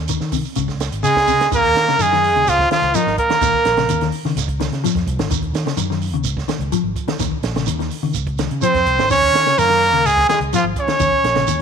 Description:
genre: afrobeat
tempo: 126 BPM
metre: 4/4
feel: straight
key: Eb dorian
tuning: A4 = 439 Hz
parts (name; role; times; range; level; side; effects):
- fingered electric bass; bass; 0.0-11.6 s; Ab1 to Eb3; -24 LUFS; equal; none
- mellow electric guitar; arpeggios; 0.1-11.5 s; C3 to F3; -24 LUFS; left 11 dB; none
- compact cocktail drum kit; drums; 0.1-11.6 s; hi-hat, kick drum, snare drum; -26 LUFS; right 4 dB; none
- shekere; percussion; 0.1-11.6 s; none; -27 LUFS; right 9 dB; none
- brilliant trumpet; melody; 1.0-4.1, 8.6-11.6 s; Eb4 to Db5; -15 LUFS; right 1 dB; none
- brilliant trombone; second line; 1.0-4.1, 8.6-11.6 s; Eb3 to Db4; -23 LUFS; right 11 dB; none
room: light reverb, small room ambience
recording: 1960s-style stereo with parts hard left and right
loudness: -15 LUFS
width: side -7 dB against mid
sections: 0.0-1.5 A section; 1.5-11.6 B section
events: none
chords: 0.0 Cm/Eb; 0.6 Db5; 1.5 Ebm7; 2.5 Dbadd9; 3.4 Eb5; 4.4 Dbadd9; 5.3 Ebm7; 6.2 Dbadd9; 7.2 Eb5; 8.1 Dbmaj9; 9.1 Ebm7; 10.1 Dbadd9; 11.0 Eb5

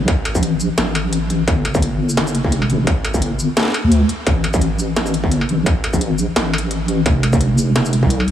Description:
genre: half-time drum and bass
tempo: 172 BPM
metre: 4/4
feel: swing 56% on 16ths, half-time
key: unclear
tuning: A4 = 440 Hz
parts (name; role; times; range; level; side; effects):
- deep soft wobble bass; bass; 0.0-8.3 s; F1 to D2; -17 LUFS; equal; chorus
- electronic kick drum; drums; 0.1-8.1 s; none; -18 LUFS; equal; distortion
- industrial drum kit; drums; 0.1-8.3 s; hi-hat, shaker, snare drum, struck metal; -21 LUFS; equal; none
room: digital ambience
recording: heavily compressed radio sound, multiband compression, small room ambience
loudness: -15 LUFS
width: side -10 dB against mid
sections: 0.0-8.3 A section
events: none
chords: none

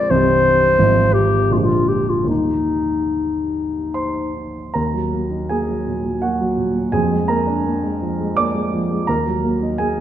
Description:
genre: classical, romantic duo for clarinet and grand piano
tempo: 68-87 BPM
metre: 3/4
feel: rubato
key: Eb major, Eb minor from 4.8 s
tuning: A4 = 439 Hz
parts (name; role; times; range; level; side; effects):
- mellow clarinet; melody; 0.0-4.3 s; Eb4 to D5; -17 LUFS; left 2 dB; none
- warm concert grand piano; accompaniment; 0.0-10.0 s; Bb0 to D6; -18 LUFS; right 1 dB; none
room: wet recital hall reverb, RT60 1.3 s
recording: none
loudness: -16 LUFS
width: side -11 dB against mid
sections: 0.0-4.8 A section; 4.8-10.0 B section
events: none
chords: 0.1 Cm; 0.8 Fm7/Ab; 1.5 Bb7; 2.3 Eb; 4.8 Ebm; 6.9 Bb7/F; 9.1 Ebm

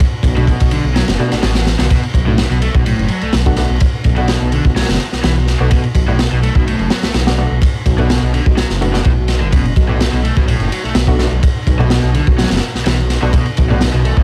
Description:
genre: breakbeat, breaks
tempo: 126 BPM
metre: 4/4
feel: swing 53% on 16ths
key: B minor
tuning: A4 = 441 Hz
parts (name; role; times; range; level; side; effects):
- crunchy breakbeat drum kit; drums; 0.0-14.2 s; kick drum, ride cymbal, snare drum; -17 LUFS; equal; none
- dark detuned saw bass; bass; 0.2-14.2 s; F#1 to B1; -18 LUFS; equal; none
- overdriven electric guitar; riff; 0.4-14.2 s; A2 to A3; -22 LUFS; equal; tube saturation, dub echo
- orchestra-hit-like synth stab; stabs; 0.4-13.8 s; A3 to F#4; -26 LUFS; equal; built-in reverb, dub echo
- riser; sound effects; 13.9-14.2 s; none; -32 LUFS; equal; none
room: studio reverb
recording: vinyl crackle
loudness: -14 LUFS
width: mono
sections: 0.0-14.2 A section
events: filter sweep on synth stab 0.0-14.2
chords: 0.0 Bm7

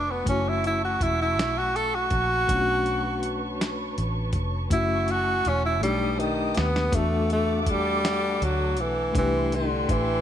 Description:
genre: slow six-eight R&B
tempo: 54 BPM (dotted quarters)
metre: 6/8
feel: straight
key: B minor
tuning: A4 = 440 Hz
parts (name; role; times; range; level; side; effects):
- breathy tenor saxophone; melody; 0.0-10.2 s; D3 to A4; -25 LUFS; equal; slapback echo
- reed electric piano; accompaniment; 0.0-10.2 s; A3 to C#5; -30 LUFS; left 4 dB; fast tremolo
- muted studio string section; sustained chords; 0.0-10.2 s; F#4 to D#6; -32 LUFS; right 1 dB; none
- vintage muted fingered electric bass; bass; 0.0-10.2 s; E1 to E2; -29 LUFS; equal; none
- dusty soul sampler-style drum kit; drums; 0.3-10.1 s; hi-hat, kick drum, snare drum; -29 LUFS; equal; none
room: light reverb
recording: none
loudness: -22 LUFS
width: side -10 dB against mid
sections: 0.0-6.9 A section; 6.9-10.2 B section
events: tenor saxophone solo 0.0-6.9; drum fill 5.8-6.9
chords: 0.3 F#m7; 2.5 Bm9; 4.7 F#m7; 5.8 B7alt; 6.9 Em11; 9.1 C6

